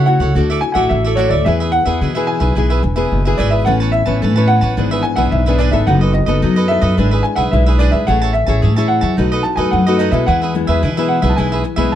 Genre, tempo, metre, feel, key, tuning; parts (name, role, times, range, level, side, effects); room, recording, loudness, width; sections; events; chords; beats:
samba; 109 BPM; 4/4; straight; A4 = 440 Hz
warm baby grand piano; melody; 0.0-12.0 s; C#5 to A5; -19 LUFS; right 1 dB
cavaquinho; accompaniment; 0.0-12.0 s; D4 to A5; -22 LUFS; right 4 dB
nylon-string guitar; accompaniment; 0.0-12.0 s; G#2 to B4; -19 LUFS; left 6 dB
upright bass; bass; 0.0-12.0 s; E1 to E3; -15 LUFS; equal
light reverb; dark, warm production; -12 LUFS; side -11 dB against mid
0.0-12.0 A section
0.4 Dadd9; 1.5 E; 3.7 Aadd9; 4.8 E7/G#; 5.9 B7/F#; 7.0 E7/G#; 8.1 Amaj7; 9.2 B7; 10.3 E
0.36 0.91 | 1.46 2.02 2.57 3.12 | 3.67 4.22 4.78 5.33 | 5.88 6.43 6.98 7.53 | 8.08 8.63 9.18 9.73 | 10.28 10.83 11.38 11.93